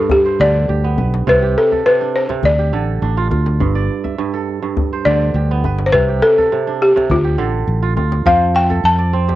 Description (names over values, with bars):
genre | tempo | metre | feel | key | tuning
west african traditional, West African string and xylophone music | 103 BPM | 4/4 | straight | F lydian | A4 = 442 Hz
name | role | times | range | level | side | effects
balafon | melody | 0.0-9.4 s | F4 to A5 | -14 LUFS | left 1 dB | cassette tape
kora | arpeggios | 0.0-9.4 s | G2 to E5 | -21 LUFS | right 7 dB | none
djembe | percussion | 0.1-9.4 s | none | -23 LUFS | left 2 dB | none
fingered electric bass | bass | 0.4-9.4 s | G1 to F2 | -16 LUFS | equal | none
room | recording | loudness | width
light reverb, small room ambience | home recording on cassette | -13 LUFS | side -14 dB against mid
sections
0.0-8.3 A section; 8.3-9.4 B section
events
none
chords
0.0 G; 1.3 C5; 2.4 Dm; 3.6 G; 5.9 C5; 7.1 Dm; 8.3 F